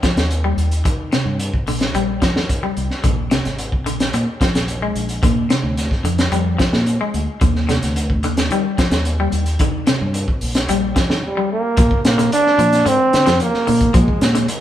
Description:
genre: afrobeat.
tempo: 110 BPM.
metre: 4/4.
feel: straight.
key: Bb mixolydian.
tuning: A4 = 440 Hz.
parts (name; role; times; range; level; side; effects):
electric guitar at the edge of break-up; arpeggios; 0.0-14.6 s; C3 to Ab3; -22 LUFS; left 2 dB; spring reverb.
fingered electric bass; bass; 0.0-14.5 s; Ab1 to Eb3; -20 LUFS; equal; none.
crunchy breakbeat drum kit; drums; 0.0-14.6 s; hi-hat, kick drum, snare drum; -19 LUFS; equal; none.
clear trombone; melody; 11.2-14.5 s; G3 to D4; -16 LUFS; right 2 dB; none.
room: moderate stone room reverb, RT60 1.3 s.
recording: band playing live in one room.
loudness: -15 LUFS.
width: side -12 dB against mid.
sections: 0.0-11.8 A section; 11.8-14.6 B section.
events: break 11.2-11.8.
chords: 0.0 Eb; 3.0 Bb7; 7.4 Ebmaj7; 11.8 Bb.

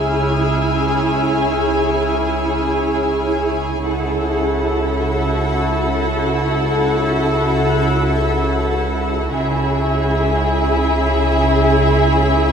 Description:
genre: cinematic, suspense film score.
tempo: free time.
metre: none.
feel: none.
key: C# minor.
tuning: A4 = 435 Hz.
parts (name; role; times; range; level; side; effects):
rich studio violin section; melody; 0.0-12.5 s; E5 to G#5; -26 LUFS; left 2 dB; none.
warm studio violin section; second line; 0.0-12.5 s; G#4 to A4; -22 LUFS; left 3 dB; none.
warm studio viola section; accompaniment; 0.0-12.5 s; E4; -22 LUFS; right 2 dB; none.
shimmering ambient pad; sustained chords; 0.0-12.5 s; E4 to E5; -22 LUFS; equal; chorus, built-in reverb.
dark studio cello section; bass; 0.0-12.5 s; C#3; -22 LUFS; right 1 dB; none.
rich studio double bass section; bass; 0.0-12.5 s; C#2; -22 LUFS; right 2 dB; none.
concert harp; texture; 0.0-9.4 s; D#6 to F#6; -34 LUFS; left 6 dB; none.
warm studio violin section; texture; 0.0-3.6 s; E6 to E#6; -29 LUFS; left 1 dB; none.
room: wet scoring stage reverb, RT60 1.8 s.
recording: minimal, uncompressed stereo recording.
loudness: -15 LUFS.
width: side -7 dB against mid.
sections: 0.0-12.5 A section.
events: none.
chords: 0.0 C#m; 3.9 A6/C#; 9.3 C#m.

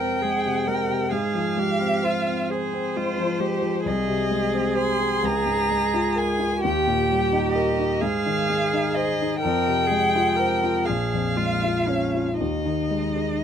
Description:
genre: classical, slow romantic movement for piano trio.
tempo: 38-45 BPM (dotted quarters).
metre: 6/8.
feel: rubato.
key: F minor, Ab major from 3.9 s.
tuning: A4 = 436 Hz.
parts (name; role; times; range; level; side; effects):
warm violin; melody; 0.0-13.4 s; C5 to C6; -26 LUFS; equal; none.
rich cello; second line; 0.0-13.4 s; Db4 to Bb4; -26 LUFS; right 5 dB; none.
warm concert grand piano; accompaniment; 0.0-13.4 s; Bb1 to Db5; -24 LUFS; left 2 dB; none.
room: light reverb.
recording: close, detailed microphones.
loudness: -21 LUFS.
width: side -8 dB against mid.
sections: 0.0-13.4 A section.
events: none.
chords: 0.0 Fm; 1.1 Fm/Ab; 3.9 Ab/C; 5.2 Bbm7/Db; 6.6 Eb; 8.0 Ab; 9.4 Fm; 10.9 Bbm7; 12.4 Ab5/Eb.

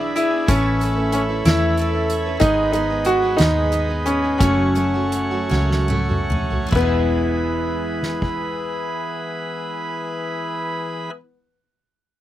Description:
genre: six-eight pop ballad.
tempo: 47-62 BPM (dotted quarters).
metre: 6/8.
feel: straight.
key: E major.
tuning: A4 = 440 Hz.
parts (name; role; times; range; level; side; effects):
clear concert grand piano; melody; 0.0-11.1 s; B3 to F#4; -22 LUFS; left 1 dB; none.
picked steel-string acoustic guitar; accompaniment; 0.0-11.2 s; F#2 to C#5; -29 LUFS; right 1 dB; double-tracked left and right.
chamber organ, cornet; sustained chords; 0.0-11.1 s; E3 to C#6; -26 LUFS; right 1 dB; none.
picked steel-string acoustic guitar; arpeggios; 0.0-11.2 s; F#2 to B4; -29 LUFS; right 5 dB; none.
vintage muted fingered electric bass; bass; 0.0-11.1 s; E1 to E2; -23 LUFS; equal; none.
soft-mallet drum kit; drums; 0.2-8.4 s; crash cymbal, hi-hat, kick drum, snare drum, toms; -22 LUFS; equal; none.
room: little or no reverb.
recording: recorded outdoors, with no room sound.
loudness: -18 LUFS.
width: side -13 dB against mid.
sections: 0.0-6.7 A section; 6.7-11.8 B section.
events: slowing down 2.4-6.7; drum fill 5.5-6.7.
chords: 0.5 Aadd9; 2.4 G#m; 4.4 F#m; 6.7 E.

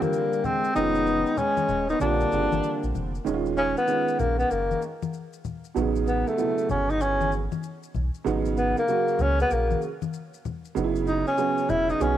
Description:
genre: hip hop, jazz-hop.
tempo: 96 BPM.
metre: 4/4.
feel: swing 64% on 16ths.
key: unclear.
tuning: A4 = 440 Hz.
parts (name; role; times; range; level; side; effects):
breathy tenor saxophone; melody; 0.0-12.2 s; A3 to Fb4; -24 LUFS; left 1 dB; cassette tape.
dark trombone; second line; 0.0-2.9 s; G3 to Cb4; -31 LUFS; left 8 dB; cassette tape, tape echo.
dark upright piano; accompaniment; 0.0-12.2 s; B2 to Gb4; -28 LUFS; right 7 dB; cassette tape.
congas and maracas; percussion; 0.0-12.2 s; none; -34 LUFS; left 6 dB; none.
sub bass with octave; bass; 0.8-12.2 s; Eb1 to Db2; -29 LUFS; equal; none.
room: light reverb, small room ambience.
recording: home recording on cassette.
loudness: -22 LUFS.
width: side -11 dB against mid.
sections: 0.0-3.3 A section; 3.3-12.2 B section.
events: tenor saxophone solo 3.3-12.2.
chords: 0.0 Abmaj7; 0.8 Fm7b5; 2.0 Bb7; 3.3 Ebm9; 5.8 A9; 8.3 Abm11; 10.8 Gb5.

